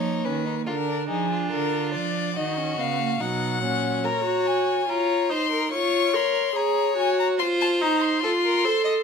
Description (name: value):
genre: classical, baroque-style fugue for string quartet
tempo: 72 BPM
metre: 4/4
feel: straight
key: unclear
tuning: A4 = 440 Hz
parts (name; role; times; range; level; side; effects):
- warm violin; melody; 0.0-9.0 s; Ab4 to Db6; -26 LUFS; left 8 dB; none
- clear violin; second line; 0.0-8.9 s; Db4 to Eb5; -28 LUFS; left 4 dB; none
- dark viola; accompaniment; 0.0-9.0 s; Gb3 to Bb4; -25 LUFS; right 3 dB; none
- rich cello; bass; 0.0-4.0 s; Bb2 to F3; -30 LUFS; right 8 dB; none
room: light reverb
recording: minimal, uncompressed stereo recording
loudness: -21 LUFS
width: side -6 dB against mid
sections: 0.0-9.0 A section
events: none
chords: 0.0 Gb (rootless); 0.7 Bb7/D; 2.4 Ebm; 4.0 Bbm; 5.7 Db/F; 7.4 F7